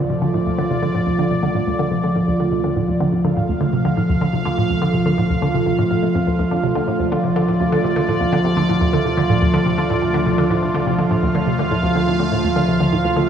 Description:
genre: ambient, sequencer-driven space music.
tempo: 124 BPM.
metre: 4/4.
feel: straight.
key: D minor.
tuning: A4 = 440 Hz.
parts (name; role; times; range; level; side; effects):
sweeping resonant pad; sustained chords; 0.0-13.3 s; F3 to F5; -18 LUFS; right 1 dB; chorus.
hollow square pluck; riff; 0.0-13.2 s; D2 to A3; -20 LUFS; equal; chorus, phaser, tape echo.
fat analog bass; bass; 0.0-13.3 s; D2; -31 LUFS; equal; none.
room: moderate plate reverb, RT60 2.5 s.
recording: echo-heavy mix, small room ambience.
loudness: -16 LUFS.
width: side -8 dB against mid.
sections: 0.0-13.3 A section.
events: fade-in on analog synth bass 0.0-13.3.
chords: 0.0 Dm.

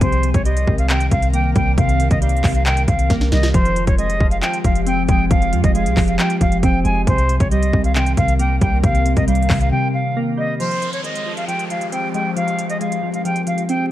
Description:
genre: hip hop, trap.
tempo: 136 BPM.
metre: 4/4.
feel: half-time.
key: F minor.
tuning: A4 = 439 Hz.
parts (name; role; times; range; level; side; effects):
bright jazz flute; melody; 0.0-13.9 s; C5 to Ab5; -22 LUFS; equal; low-pass filter, digital delay.
glassy digital keys; accompaniment; 0.0-13.9 s; C3 to C4; -22 LUFS; right 1 dB; chorus, phaser, low-pass filter.
ethereal airy pad; sustained chords; 0.0-13.9 s; Eb3 to Bb4; -26 LUFS; left 2 dB; ensemble chorus, built-in reverb.
clean 808-style bass; bass; 0.0-9.7 s; F1 to F2; -18 LUFS; equal; none.
trap drum kit; drums; 0.0-13.8 s; handclaps, hi-hat, kick drum, snare drum; -20 LUFS; equal; overdrive.
downlifter; sound effects; 10.6-13.9 s; none; -32 LUFS; equal; none.
room: light reverb, digital ambience.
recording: dark, warm production, vinyl crackle.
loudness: -15 LUFS.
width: side -13 dB against mid.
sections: 0.0-10.6 A section; 10.6-13.9 B section.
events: drum fill 3.1-3.5; break 9.7-10.6.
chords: 0.0 Cm7; 3.5 Fmadd9; 7.1 Cm7; 10.6 Fmadd9.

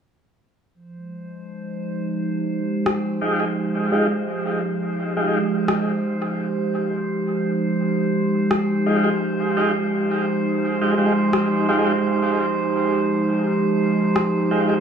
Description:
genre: ambient dub.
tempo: 85 BPM.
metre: 4/4.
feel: straight.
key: F minor.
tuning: A4 = 440 Hz.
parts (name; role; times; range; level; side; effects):
warbly tape-like pad; sustained chords; 0.7-14.8 s; F3 to G4; -21 LUFS; right 1 dB; chorus, built-in reverb.
drifting glass-harmonics texture; texture; 1.2-14.8 s; C5; -29 LUFS; right 5 dB; chorus, built-in reverb.
electronic rim click; drums; 2.9-14.3 s; none; -27 LUFS; left 2 dB; studio reverb, dub echo.
tonewheel organ; stabs; 3.2-14.7 s; Ab3 to G4; -24 LUFS; equal; slow rotary speaker, low-pass filter, dub echo.
room: wet concert hall reverb, RT60 2.2 s.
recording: small room ambience.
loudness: -19 LUFS.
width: side -7 dB against mid.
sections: 0.7-14.8 A section.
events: none.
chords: 0.7 Fm9.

